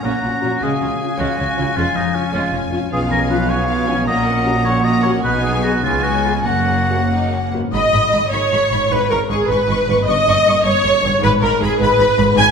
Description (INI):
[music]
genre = classical, dramatic, fast romantic movement for symphony orchestra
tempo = 104 BPM (dotted quarters)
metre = 6/8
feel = rubato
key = F# major, G# minor from 7.7 s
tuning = A4 = 439 Hz
[part]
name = rich symphonic violin section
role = melody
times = 0.0-12.5 s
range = E#5 to C#6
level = -28 LUFS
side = left 6 dB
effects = none
[part]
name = dark clarinet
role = second line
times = 0.0-7.5 s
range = A#3 to C#4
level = -26 LUFS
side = equal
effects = none
[part]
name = mellow hollow concert flute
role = second line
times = 0.0-7.5 s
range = E#5 to G#5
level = -25 LUFS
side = left 1 dB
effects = none
[part]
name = warm oboe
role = second line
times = 0.0-7.1 s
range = C#4 to D#5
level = -21 LUFS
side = equal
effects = none
[part]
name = rich studio viola section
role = accompaniment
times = 0.0-12.5 s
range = A#3 to Ab5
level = -18 LUFS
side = right 1 dB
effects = none
[part]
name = concert harp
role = arpeggios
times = 0.0-12.5 s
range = F#2 to C#5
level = -26 LUFS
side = left 5 dB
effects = none
[part]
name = rich symphonic cello section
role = bass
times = 0.0-12.4 s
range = E#2 to C#3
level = -24 LUFS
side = right 3 dB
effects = none
[part]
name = rich symphonic double bass section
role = bass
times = 0.0-12.4 s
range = E#1 to C#2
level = -23 LUFS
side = right 2 dB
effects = none
[part]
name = clear symphonic violin section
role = second line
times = 0.1-12.5 s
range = G#3 to Ab5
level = -26 LUFS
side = left 4 dB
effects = none
[part]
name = mellow French horn section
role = sustained chords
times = 0.4-7.6 s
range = A#3 to G#4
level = -28 LUFS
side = left 2 dB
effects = none
[sound]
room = wet concert hall reverb, RT60 2.0 s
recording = minimal, uncompressed stereo recording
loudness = -14 LUFS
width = side -6 dB against mid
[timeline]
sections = 0.0-7.7 A section; 7.7-12.5 B section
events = none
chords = 0.0 F#/A#; 0.6 C#; 1.8 C#/E#; 2.9 C#7/B; 4.1 F#/A#; 5.2 G#m/B; 5.8 C#5; 6.5 F#; 7.7 G#m; 8.9 C#m/G#; 10.1 D#7/G; 11.2 G#m